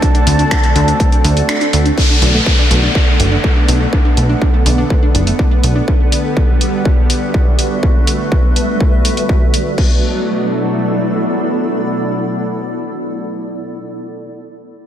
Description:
melodic techno; 123 BPM; 4/4; straight; B phrygian; A4 = 440 Hz
expressive synth lead; melody; 0.0-1.9 s; A5; -21 LUFS; equal; chorus, sidechain pumping, analog delay
lush unison pad; sustained chords; 0.0-13.4 s; B2 to F#4; -20 LUFS; equal; chorus, sidechain pumping
wide unison pluck; arpeggios; 0.0-5.8 s; A3 to D4; -21 LUFS; right 1 dB; sidechain pumping, tape echo
electronic kick drum; drums; 0.0-9.9 s; -13 LUFS; equal; distortion
techno drum kit; drums; 0.0-9.9 s; crash cymbal, finger snaps, hi-hat; -21 LUFS; equal
granular cloud pad; texture; 0.0-13.6 s; G3 to F#5; -22 LUFS; right 1 dB; built-in reverb, sidechain pumping
plucky analog bass; bass; 0.3-5.8 s; F#1 to D2; -14 LUFS; equal; sidechain pumping
downlifter; sound effects; 2.0-5.9 s; -19 LUFS; equal
moderate lush hall reverb, RT60 1.7 s; dreamy mix soaked in reverb; -11 LUFS; side -10 dB against mid
0.0-2.0 A section; 2.0-9.8 B section; 9.8-13.7 C section
drop 0.0-2.0; kick drops out 1.5-2.0
0.0 D7; 2.0 Bm7; 5.9 G; 9.8 Bm7

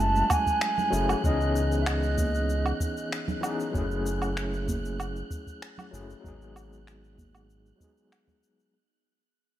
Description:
sunset chillout; 96 BPM; 4/4; straight; F# dorian; A4 = 440 Hz
mellow hollow jazz flute; melody; 0.0-3.1 s; D#5 to A5; -29 LUFS; right 1 dB; ping-pong delay
overdriven tine electric piano; accompaniment; 0.0-8.8 s; E3 to G#4; -32 LUFS; moving between left 4 dB and right 3 dB; medium tremolo, auto-pan, ping-pong delay
concert harp; arpeggios; 0.0-1.2 s; barely audible
round analog bass; bass; 0.0-7.7 s; F#1 to C#2; -30 LUFS; equal
electronic cabasa, woodblock and finger snaps; drums; 0.0-8.7 s; -34 LUFS; right 1 dB; overdrive, studio ambience
wind-like tuned noise texture; texture; 0.0-8.8 s; F#6; -40 LUFS; right 3 dB; built-in reverb
electronic kick drum; drums; 0.3-8.4 s; -30 LUFS; equal; overdrive, studio ambience
congas; percussion; 0.8-8.4 s; -38 LUFS; right 4 dB
light reverb; -25 LUFS; side -12 dB against mid
0.0-8.7 A section
fade-out 0.0-8.7
0.0 F#m9; 1.2 C#m9; 3.7 F#m9; 6.2 G#m7

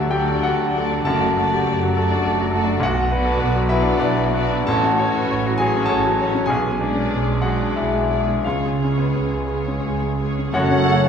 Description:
classical, romantic movement for piano and orchestra; 83-105 BPM; 3/4; rubato; F# minor; A4 = 439 Hz
clear concert grand piano; melody; 0.0-11.1 s; A1 to A5; -20 LUFS; left 2 dB
muted chamber violin section; melody; 0.0-11.0 s; C#5 to D5; -31 LUFS; left 3 dB
muted studio violin section; second line; 0.0-11.1 s; F#4 to F#5; -29 LUFS; left 1 dB
muted chamber viola section; accompaniment; 0.0-11.0 s; G#3 to F#4; -28 LUFS; equal
muted chamber double bass section; bass; 0.0-11.1 s; F#1 to F#2; -27 LUFS; right 3 dB
muted studio cello section; bass; 0.0-11.1 s; F#2 to F#3; -27 LUFS; right 4 dB
timpani; percussion; 1.0-1.9, 10.5-11.1 s; F#2; -26 LUFS; right 1 dB
bright clarinet; second line; 10.5-11.1 s; C#5; -26 LUFS; left 1 dB
mellow hollow flute section; second line; 10.5-11.1 s; A4; -28 LUFS; left 2 dB
warm oboe; second line; 10.5-11.1 s; A5; -30 LUFS; right 2 dB
mellow French horn section; sustained chords; 10.5-11.1 s; C#4 to F#4; -25 LUFS; left 3 dB
warm trombone section; sustained chords; 10.5-11.1 s; C#3 to A3; -29 LUFS; right 4 dB
dark trumpet section; stabs; 10.5-11.1 s; C#5; -27 LUFS; left 1 dB
dark tuba; bass; 10.5-11.1 s; F#1; -25 LUFS; right 3 dB
wet scoring stage reverb, RT60 1.7 s; heard from further back in the room; -17 LUFS; side -7 dB against mid
0.0-10.5 A section
0.0 D; 1.0 D/F#; 2.8 Bm; 4.7 F#m/A; 6.5 G#dim/B; 8.4 C#; 10.5 F#m

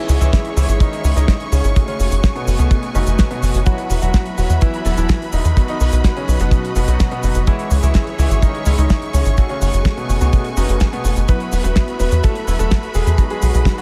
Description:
italo disco; 126 BPM; 4/4; straight; C# minor; A4 = 441 Hz
clear concert grand piano; melody; 0.0-13.8 s; B2 to B4; -26 LUFS; equal; tape echo
rich symphonic string section; sustained chords; 0.0-13.8 s; A3 to C#6; -29 LUFS; equal
chorused polysynth; stabs; 0.0-13.8 s; F#3 to C#5; -30 LUFS; equal; tape echo
tight sequencer bass; bass; 0.1-13.6 s; E1 to E2; -17 LUFS; equal
damped 70s drum kit; drums; 0.1-13.8 s; cabasa, hi-hat, snare drum; -27 LUFS; equal; studio reverb
kick drum; drums; 0.3-13.8 s; -17 LUFS; equal; studio reverb
light reverb, small room ambience; -17 LUFS; mono
0.0-13.8 A section
0.0 C#m; 1.8 F#madd9; 3.7 Esus2; 5.6 B; 7.5 C#m; 9.4 F#madd9; 11.3 Esus2; 13.2 B

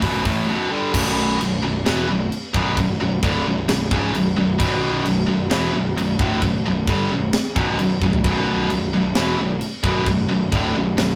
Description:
heavy metal; 131 BPM; 4/4; straight; B minor; A4 = 440 Hz
heavy high-gain guitar; riff; 0.0-11.2 s; B1 to A3; -25 LUFS; equal; distortion
high-gain distorted guitar; riff; 0.0-11.2 s; B1 to A3; -26 LUFS; equal; distortion
fuzz picked electric bass; bass; 0.0-11.2 s; B0 to A1; -27 LUFS; equal; overdrive
tight metal drum kit; drums; 0.0-11.1 s; crash cymbal, hi-hat, kick drum, snare drum, toms; -26 LUFS; equal
wet small room ambience, RT60 0.5 s; rough rehearsal-room recording, tube saturation; -20 LUFS; mono
0.9-11.2 A section
half time 0.9-11.2; drum fill 8.0
0.0 Bm

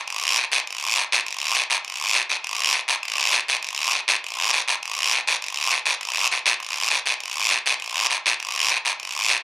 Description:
latin; 202 BPM; 4/4; straight
guiro; percussion; 0.1-9.4 s; -19 LUFS; equal
little or no reverb; recorded outdoors, with no room sound; -19 LUFS; side -20 dB against mid
0.0-5.4 A section; 5.4-9.4 B section

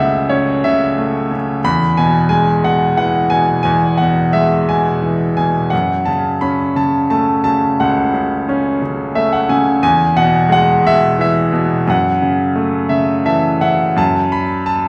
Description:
classical, lyrical solo piano; 59 BPM (dotted quarters); 6/8; rubato; F# minor; A4 = 441 Hz
bright grand piano; solo; 0.0-14.9 s; C#2 to B5; -15 LUFS; equal
wet recital hall reverb, RT60 1.4 s; recorded in a church or concert hall; -15 LUFS; mono
0.0-14.0 A section
grand piano fill 8.8-9.8, 12.9-14.0
0.0 F#m7; 1.6 Eadd9; 5.7 F#m; 9.8 Eadd9; 11.9 F#m7; 14.0 F#m

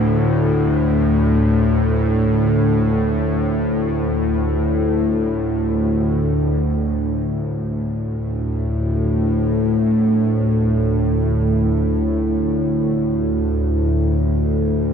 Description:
ambient; free time; A4 = 440 Hz
bowed-like drone; solo; 0.0-14.9 s; D2 to A2; -16 LUFS; equal; built-in reverb
wet huge ambient reverb, RT60 8.1 s; dark, warm production; -16 LUFS; side -7 dB against mid
0.0-6.4 A section; 6.4-14.9 B section
0.0 D5

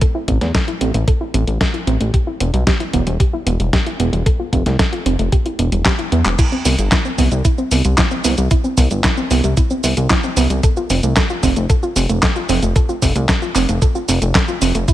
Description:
italo disco; 113 BPM; 4/4; straight; A4 = 440 Hz
soft round pluck; arpeggios; 0.0-14.9 s; G3 to A4; -21 LUFS; right 3 dB; chorus, ping-pong delay
clean 12-bit digital drum machine; drums; 0.0-14.9 s; cabasa, crash cymbal, handclaps, hi-hat, snare drum; -20 LUFS; equal; small room reverb, gated reverb
electronic kick drum; drums; 0.0-14.9 s; -16 LUFS; equal; small room reverb
chorused synth bass; bass; 0.3-14.9 s; E1 to E2; -18 LUFS; equal; ping-pong delay
little or no reverb; -14 LUFS; side -13 dB against mid
0.0-6.4 A section; 6.4-14.9 B section
drum fill 5.9-6.4
0.0 Am; 2.1 Em; 4.3 F; 5.3 Em; 6.4 Cmaj7; 10.6 F

